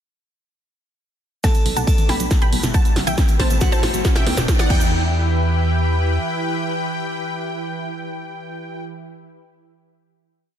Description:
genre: uplifting trance.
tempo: 138 BPM.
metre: 4/4.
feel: straight.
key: E minor.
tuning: A4 = 440 Hz.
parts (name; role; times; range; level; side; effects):
wide unison pluck; melody; 1.4-8.8 s; C5 to B5; -27 LUFS; equal; analog chorus, sidechain pumping, tape echo.
glassy synth bell; second line; 1.4-8.8 s; F#4 to A5; -31 LUFS; left 1 dB; chorus, ping-pong delay.
supersaw stab; second line; 1.4-8.8 s; F#5 to B5; -31 LUFS; equal; sidechain pumping, low-pass filter, tape echo.
analog string pad; sustained chords; 1.4-8.8 s; E3 to B4; -26 LUFS; equal; ensemble chorus, sidechain pumping.
wide unison pluck; arpeggios; 1.4-5.1 s; E2 to E4; -28 LUFS; right 1 dB; sidechain pumping, tape echo.
electronic kick drum; drums; 1.4-4.8 s; none; -17 LUFS; equal; none.
punchy analog drum machine; drums; 1.4-4.8 s; crash cymbal, hi-hat, snare drum; -26 LUFS; equal; none.
tube shaker; percussion; 1.4-4.9 s; none; -32 LUFS; right 4 dB; none.
riser; sound effects; 2.5-4.9 s; none; -31 LUFS; right 2 dB; none.
solid FM bass; bass; 1.7-6.2 s; D1 to E2; -21 LUFS; equal; sidechain pumping.
room: light reverb.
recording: dense, heavily limited modern master.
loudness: -17 LUFS.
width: side -9 dB against mid.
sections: 1.4-4.9 build; 4.9-8.4 final hit.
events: build-up 1.4-4.9; drum fill 1.4-4.9; filter sweep on synth pluck 1.4-4.9; filter sweep on synth arpeggio sound 1.4-4.9; filter sweep on supersaw synth 1.4-4.9; riser 2.5-4.9.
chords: 1.4 Bm7; 2.3 Emadd9; 3.2 Am; 4.0 Dsus2; 4.7 Em.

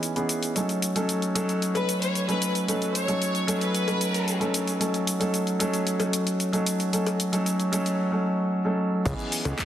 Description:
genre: nu-disco, nu disco.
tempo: 113 BPM.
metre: 4/4.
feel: straight.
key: unclear.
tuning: A4 = 440 Hz.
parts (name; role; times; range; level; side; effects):
warm grand piano; accompaniment; 0.0-9.7 s; E3 to A4; -24 LUFS; equal; sidechain pumping, tape echo.
house drum kit; drums; 0.0-9.7 s; crash cymbal, handclaps, hi-hat, shaker; -31 LUFS; left 1 dB; soft clipping on snare.
warm studio violin section; melody; 1.8-4.4 s; B4 to C#5; -29 LUFS; left 1 dB; tape echo.
cowbell; percussion; 1.8-9.6 s; none; -35 LUFS; left 5 dB; none.
fat analog bass; bass; 9.1-9.5 s; C#2; -27 LUFS; equal; none.
electronic kick drum; drums; 9.1-9.7 s; none; -32 LUFS; equal; none.
room: wet lush hall reverb, RT60 2.0 s.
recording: dense, heavily limited modern master.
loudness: -23 LUFS.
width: side -11 dB against mid.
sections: 0.0-9.1 A section.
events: none.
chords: 0.0 C#m9; 0.6 D#m7b5; 9.1 C#m9.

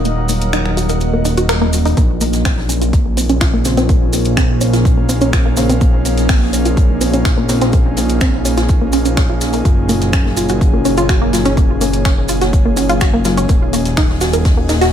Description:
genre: melodic techno.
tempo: 125 BPM.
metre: 4/4.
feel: straight.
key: Bb minor.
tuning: A4 = 441 Hz.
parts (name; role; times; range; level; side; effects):
deep dark ambient pad; sustained chords; 0.0-14.9 s; Gb3 to Eb5; -21 LUFS; right 1 dB; chorus, built-in reverb, sidechain pumping.
fat analog bass; bass; 0.0-14.9 s; Eb1 to Bb1; -18 LUFS; equal; sidechain pumping.
analog drone; drone; 0.1-14.9 s; Bb2 to Bb3; -28 LUFS; left 1 dB; none.
maracas; percussion; 0.0-14.9 s; none; -26 LUFS; right 4 dB; none.
airy breathy pad; texture; 0.0-14.9 s; Db4 to Gb5; -26 LUFS; left 2 dB; chorus, sidechain pumping.
wide unison pluck; arpeggios; 0.1-14.9 s; Bb3 to Bb4; -19 LUFS; equal; sidechain pumping, ping-pong delay.
house drum kit; drums; 0.1-14.9 s; finger snaps, hi-hat; -24 LUFS; left 1 dB; sidechain pumping on hats, studio reverb.
electronic kick drum; drums; 2.0-14.6 s; none; -14 LUFS; equal; studio reverb.
jazz brush drum kit; drums; 2.0-14.9 s; hi-hat, snare drum; -30 LUFS; left 2 dB; high-pass filter on hats, studio reverb, high-pass filter on snare, high-pass filter on room.
filtered dub chord stab; stabs; 3.7-7.6, 11.3-13.4 s; Db3 to F4; -24 LUFS; left 2 dB; none.
room: light reverb.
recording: none.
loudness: -12 LUFS.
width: side -9 dB against mid.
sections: 0.0-14.9 A section.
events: filter sweep on synth arpeggio sound 0.0-14.9; break 0.1-2.0.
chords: 0.0 Ebm; 2.0 Bbmadd9; 9.7 Gbmaj7; 13.5 Ebm.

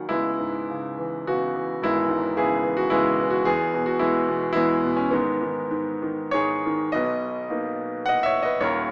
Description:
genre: classical, lyrical solo piano.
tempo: 93-116 BPM.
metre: 3/4.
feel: rubato.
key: unclear.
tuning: A4 = 440 Hz.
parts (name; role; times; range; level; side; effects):
bright concert grand piano; solo; 0.0-8.9 s; D#1 to F#5; -24 LUFS; equal; none.
room: moderate concert hall reverb, RT60 2.4 s.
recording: small speaker sound.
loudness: -24 LUFS.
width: mono.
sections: 0.0-6.9 A section; 6.9-8.9 B section.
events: none.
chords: 0.1 C#m7; 3.5 E; 5.1 G#m; 6.9 Bmaj7.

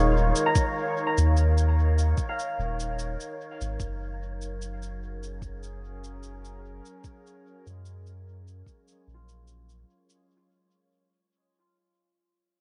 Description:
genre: ambient dub.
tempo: 74 BPM.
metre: 4/4.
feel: swing 53% on 16ths.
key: unclear.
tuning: A4 = 439 Hz.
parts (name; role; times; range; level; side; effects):
warbly tape-like pad; sustained chords; 0.0-10.3 s; Eb3 to F5; -35 LUFS; equal; chorus, built-in reverb.
concert harp; arpeggios; 0.0-12.0 s; Ab3 to Db6; -34 LUFS; equal; low-pass filter, dub echo.
soft dub sub bass; bass; 0.0-9.8 s; Eb1 to Gb2; -29 LUFS; equal; none.
wind-like tuned noise texture; texture; 0.0-10.3 s; Db5; -42 LUFS; equal; built-in reverb.
cabasa; drums; 0.4-10.2 s; none; -40 LUFS; equal; dub echo.
electronic kick drum; drums; 0.6-8.8 s; none; -29 LUFS; equal; none.
room: light reverb, studio ambience.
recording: nothing above 10.4 kHz.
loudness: -26 LUFS.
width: mono.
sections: 0.0-10.3 A section.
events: fade-out 0.0-10.3; filter sweep on harp 0.0-10.3.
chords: 0.0 Eb5; 3.8 Gbmaj7.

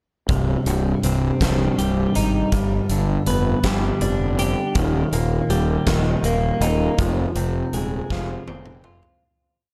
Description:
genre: quiet-loud alternative rock.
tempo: 54 BPM (dotted quarters).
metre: 6/8.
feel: straight.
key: C minor.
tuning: A4 = 438 Hz.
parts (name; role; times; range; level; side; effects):
twelve-string electric guitar; arpeggios; 0.3-9.2 s; C2 to G4; -24 LUFS; equal; tape echo.
fuzz fingered electric bass; bass; 0.3-9.0 s; C1 to Ab1; -25 LUFS; equal; overdrive.
huge arena drum kit; drums; 0.3-9.2 s; hi-hat, kick drum, snare drum, toms; -29 LUFS; equal; none.
room: light reverb, small room ambience.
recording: none.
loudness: -21 LUFS.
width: mono.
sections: 0.3-9.2 verse.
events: fade-out 7.0-9.2; drum fill 8.1-9.2.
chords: 0.3 Cm; 2.5 G; 4.8 Eb; 7.0 Fm.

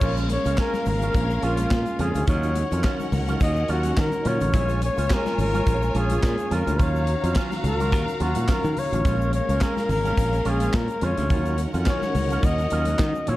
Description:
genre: disco.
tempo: 106 BPM.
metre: 4/4.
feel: swing 56% on 16ths.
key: unclear.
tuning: A4 = 438 Hz.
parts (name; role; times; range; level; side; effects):
breathy flugelhorn; melody; 0.0-13.4 s; F4 to Eb5; -27 LUFS; left 2 dB; none.
clear studio string section; second line; 0.0-13.4 s; Db4 to Bb5; -32 LUFS; equal; none.
electric guitar with an envelope filter; accompaniment; 0.0-13.4 s; Gb3 to Ab4; -32 LUFS; right 4 dB; spring reverb.
percussive tonewheel organ; sustained chords; 0.0-13.4 s; Eb3 to F5; -33 LUFS; right 2 dB; chorus vibrato, fast rotary speaker.
modern bright fingered electric bass; bass; 0.0-13.4 s; Ab1 to Eb3; -24 LUFS; equal; none.
modern studio drum kit; drums; 0.0-13.4 s; crash cymbal, handclaps, hi-hat, kick drum, snare drum; -26 LUFS; equal; none.
congas; percussion; 0.0-13.4 s; none; -34 LUFS; left 4 dB; none.
egg shaker; percussion; 0.0-13.3 s; none; -52 LUFS; right 8 dB; none.
room: light reverb, small room ambience.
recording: dark, warm production.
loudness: -20 LUFS.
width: side -16 dB against mid.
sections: 0.0-13.4 A section.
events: none.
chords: 0.0 Bbm7; 2.3 Ebm9; 4.5 Bbm7; 6.8 Ebm9; 9.1 Bbm7; 11.3 Ebm9.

